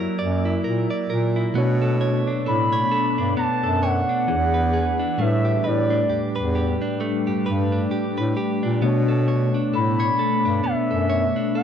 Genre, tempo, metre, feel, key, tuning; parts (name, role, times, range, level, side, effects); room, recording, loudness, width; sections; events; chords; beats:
contemporary R&B; 66 BPM; 4/4; swing 58% on 16ths; B minor; A4 = 439 Hz
mellow tine electric piano; accompaniment; 0.0-11.6 s; A2 to D5; -28 LUFS; left 1 dB; medium stereo tremolo
glassy FM pad; sustained chords; 0.0-11.6 s; E3 to G#4; -27 LUFS; left 3 dB; ensemble chorus, built-in reverb
direct-recorded clean electric guitar; arpeggios; 0.0-11.6 s; E3 to D5; -27 LUFS; right 3 dB
mellow bass clarinet; bass; 0.0-11.3 s; E2 to B2; -23 LUFS; equal
gliding portamento lead; melody; 2.5-11.6 s; D5 to B5; -23 LUFS; equal; chorus, phaser
light reverb; dry, gritty hardware recording; -19 LUFS; side -8 dB against mid
0.0-11.6 A section
0.0 F#7b9b13; 1.6 Bm9; 4.3 E7; 5.2 A9sus4; 8.8 Bm9
0.64 | 1.55 2.46 3.37 4.28 | 5.19 6.10 7.01 7.92 | 8.82 9.73 10.64 11.55